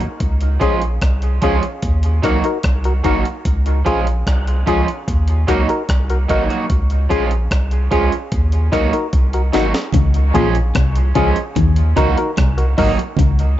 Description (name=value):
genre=dub reggae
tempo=74 BPM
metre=4/4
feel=straight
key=Db major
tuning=A4 = 440 Hz
part: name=electric guitar at the edge of break-up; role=accompaniment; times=0.0-13.0 s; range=F3 to Gb4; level=-22 LUFS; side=right 5 dB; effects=lush chorus, dub echo
part: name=breakbeat sampler-style drum kit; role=drums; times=0.0-13.6 s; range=hi-hat, kick drum, rim click, snare drum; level=-20 LUFS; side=equal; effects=none
part: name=warm sub bass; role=bass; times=0.2-13.6 s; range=Ab1 to Eb2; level=-17 LUFS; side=equal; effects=none
part: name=percussive organ stab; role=stabs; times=0.6-12.9 s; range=Db4 to Bb4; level=-22 LUFS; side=left 3 dB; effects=chorus, phaser, dub echo
part: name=electric guitar at the edge of break-up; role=riff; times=9.9-13.4 s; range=Ab2 to Eb3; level=-21 LUFS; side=left 6 dB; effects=none
part: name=congas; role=percussion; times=9.9-13.4 s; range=none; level=-24 LUFS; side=right 6 dB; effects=none
room=light reverb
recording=nothing above 7.8 kHz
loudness=-14 LUFS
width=side -13 dB against mid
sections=0.0-9.9 A section; 9.9-13.6 B section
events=break 0.0-9.9; drum fill 9.1-9.9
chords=0.2 Db; 1.8 Ebm; 3.5 Db; 5.1 Ebm; 6.7 Db; 8.3 Ebm; 9.9 Db; 11.6 Ebm